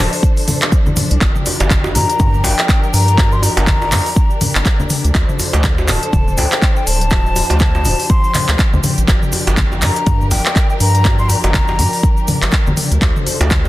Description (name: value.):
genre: afro house.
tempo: 122 BPM.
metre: 4/4.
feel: swing 58% on 16ths.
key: G minor.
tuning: A4 = 440 Hz.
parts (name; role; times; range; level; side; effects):
breathy mellow silver concert flute; melody; 0.0-12.4 s; G5 to C6; -21 LUFS; left 2 dB; digital delay.
warm symphonic string section; sustained chords; 0.0-13.7 s; F3 to C5; -24 LUFS; left 2 dB; vintage 12-bit sampler grit, sidechain pumping.
round analog bass; bass; 0.0-13.7 s; D1 to G2; -16 LUFS; equal; sidechain pumping.
afro-pop drum kit; drums; 0.1-13.6 s; handclaps, hi-hat, toms; -18 LUFS; left 1 dB; none.
maracas; percussion; 0.1-13.7 s; none; -28 LUFS; right 2 dB; none.
electronic kick drum; drums; 0.2-13.6 s; none; -14 LUFS; equal; none.
congas; percussion; 0.5-13.6 s; none; -22 LUFS; equal; none.
djembe; percussion; 1.2-13.7 s; none; -23 LUFS; right 2 dB; none.
room: small room ambience.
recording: dense, heavily limited modern master.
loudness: -12 LUFS.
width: side -16 dB against mid.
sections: 0.0-13.7 A section.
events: none.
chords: 0.0 Dm7; 1.2 Gm7; 5.1 Dm7; 9.1 Gm7; 13.0 Dm7.